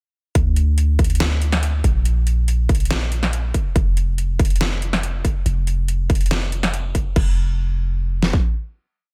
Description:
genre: future bass.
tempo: 141 BPM.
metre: 4/4.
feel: half-time.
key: unclear.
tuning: A4 = 442 Hz.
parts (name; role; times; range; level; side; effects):
warm 808-style bass; bass; 0.4-8.4 s; F1 to D2; -22 LUFS; equal; sidechain pumping.
dubstep drum kit; drums; 0.4-8.4 s; kick drum, snare drum; -21 LUFS; equal; overdrive.
dubstep drum kit; drums; 0.4-7.2 s; crash cymbal, hi-hat, snare drum; -27 LUFS; equal; overdrive.
room: little or no reverb.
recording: none.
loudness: -20 LUFS.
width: mono.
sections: 0.4-7.2 drop; 7.2-9.1 final note.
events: drop 0.4-7.2.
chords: none.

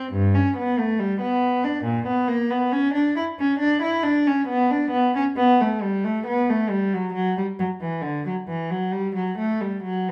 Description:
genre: classical, baroque-style suite movement for unaccompanied cello.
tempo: 68 BPM.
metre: 4/4.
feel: rubato.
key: B minor.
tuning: A4 = 440 Hz.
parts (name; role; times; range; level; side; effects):
warm cello; solo; 0.0-10.1 s; G2 to E4; -23 LUFS; equal; none.
room: wet stone room reverb, RT60 0.9 s.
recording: heard from further back in the room.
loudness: -23 LUFS.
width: mono.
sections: 0.0-10.1 A section.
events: none.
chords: none.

